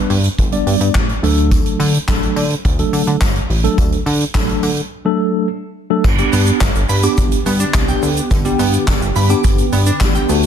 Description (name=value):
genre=dance-pop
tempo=106 BPM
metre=4/4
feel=straight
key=unclear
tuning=A4 = 441 Hz
part: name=mellow tine electric piano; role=accompaniment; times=0.0-10.5 s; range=F#3 to D5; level=-18 LUFS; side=equal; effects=medium stereo tremolo, sidechain pumping
part: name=chorused synth bass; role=bass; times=0.1-10.5 s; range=G1 to D3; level=-17 LUFS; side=equal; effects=sidechain pumping
part: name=soft-mallet drum kit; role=drums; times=0.1-10.5 s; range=crash cymbal, handclaps, hi-hat, kick drum, shaker, snare drum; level=-17 LUFS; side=equal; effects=none
part: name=tambourine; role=percussion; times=1.5-10.4 s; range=none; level=-36 LUFS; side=left 11 dB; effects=none
part: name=shimmering ambient pad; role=sustained chords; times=6.9-10.5 s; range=D3 to G4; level=-23 LUFS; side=right 1 dB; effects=chorus, built-in reverb, phaser, sidechain pumping
part: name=glassy wavetable pluck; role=arpeggios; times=6.0-10.3 s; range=D3 to D6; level=-24 LUFS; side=right 3 dB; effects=chorus, sidechain pumping, digital delay
room=light reverb, studio ambience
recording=dense, heavily limited modern master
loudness=-13 LUFS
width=side -8 dB against mid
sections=0.0-6.0 A section; 6.0-10.5 B section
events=break 4.9-6.0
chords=0.0 G; 1.2 D; 6.0 G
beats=0.38 0.95 | 1.52 2.08 2.65 3.21 | 3.78 4.35 4.91 5.48 | 6.04 6.61 7.18 7.74 | 8.31 8.88 9.44 10.01